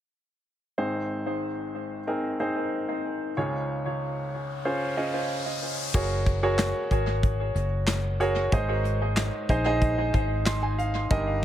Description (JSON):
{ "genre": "piano-driven pop", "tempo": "93 BPM", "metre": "4/4", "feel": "straight", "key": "Ab major", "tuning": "A4 = 442 Hz", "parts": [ { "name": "clear baby grand piano", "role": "accompaniment", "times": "0.8-11.4 s", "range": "Ab1 to C6", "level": "-27 LUFS", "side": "equal", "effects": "tape echo" }, { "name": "riser", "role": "sound effects", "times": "4.2-5.9 s", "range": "none", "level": "-36 LUFS", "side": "left 3 dB", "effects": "none" }, { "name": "vintage muted fingered electric bass", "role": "bass", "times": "5.9-11.4 s", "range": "Gb1 to Bb1", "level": "-28 LUFS", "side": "equal", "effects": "none" }, { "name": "soft brush drum kit", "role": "drums", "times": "5.9-11.3 s", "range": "crash cymbal, handclaps, hi-hat, kick drum, snare drum", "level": "-27 LUFS", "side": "equal", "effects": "tape echo" } ], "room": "light reverb, small room ambience", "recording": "echo-heavy mix", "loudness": "-24 LUFS", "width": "side -11 dB against mid", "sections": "0.8-5.9 A section; 5.9-11.4 B section", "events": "riser 4.2-5.9; grand piano fill 10.1-11.1", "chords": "0.8 Ab; 3.4 Db; 5.9 Gbadd9; 8.5 Ab", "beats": "| 0.78 1.43 2.07 2.72 | 3.36 4.01 4.66 5.30 | 5.95 6.59 7.24 7.88 | 8.53 9.17 9.82 10.46 | 11.11" }